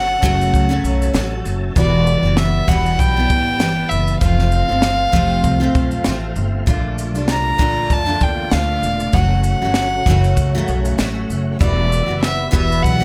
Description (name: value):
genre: acoustic pop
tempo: 98 BPM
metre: 4/4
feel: swing 55% on 16ths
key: unclear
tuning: A4 = 439 Hz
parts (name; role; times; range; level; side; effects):
- warm violin; melody; 0.0-13.0 s; D5 to Bb5; -23 LUFS; equal; plate reverb
- picked steel-string acoustic guitar; accompaniment; 0.0-13.0 s; E2 to F#4; -23 LUFS; equal; double-tracked, plate reverb
- overdriven tonewheel organ; sustained chords; 0.0-13.0 s; Bb2 to A5; -33 LUFS; equal; chorus vibrato, fast rotary speaker, plate reverb
- upright bass; bass; 0.0-13.0 s; E1 to F2; -22 LUFS; equal; none
- compact cocktail drum kit; drums; 0.2-13.0 s; kick drum, shaker, snare drum; -22 LUFS; equal; none
room: light reverb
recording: none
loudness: -17 LUFS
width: mono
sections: 0.0-13.0 A section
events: none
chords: 0.0 F#m; 1.8 Emadd9; 4.2 F; 6.7 Bbmaj7; 9.1 F#m; 11.6 Emadd9